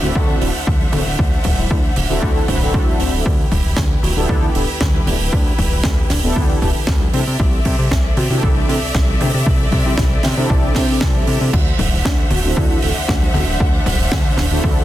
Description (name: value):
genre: nu-disco, nu disco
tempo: 116 BPM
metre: 4/4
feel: straight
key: D mixolydian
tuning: A4 = 440 Hz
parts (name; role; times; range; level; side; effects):
- soft octave-layered synth lead; melody; 0.0-14.6 s; D4 to F#4; -30 LUFS; left 1 dB; chorus, phaser, dub echo
- mellow synth brass; accompaniment; 0.0-14.8 s; B3 to C5; -23 LUFS; equal; chorus, cassette tape, sidechain pumping, dub echo
- warm symphonic string section; sustained chords; 0.0-14.8 s; C4 to F#5; -25 LUFS; left 2 dB; sidechain pumping
- fat analog bass; bass; 0.0-14.8 s; D1 to C3; -19 LUFS; equal; none
- electronic kick drum; drums; 0.2-14.7 s; none; -18 LUFS; equal; overdrive, studio reverb
- congas; percussion; 0.2-14.5 s; none; -27 LUFS; left 1 dB; none
- tight funk drum kit; drums; 0.4-14.5 s; crash cymbal, hi-hat, snare drum; -24 LUFS; right 3 dB; studio reverb
room: studio ambience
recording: dense, heavily limited modern master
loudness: -14 LUFS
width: side -14 dB against mid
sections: 0.0-14.8 A section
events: none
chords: 0.0 D9; 3.3 G69/D; 7.1 C69; 11.5 D9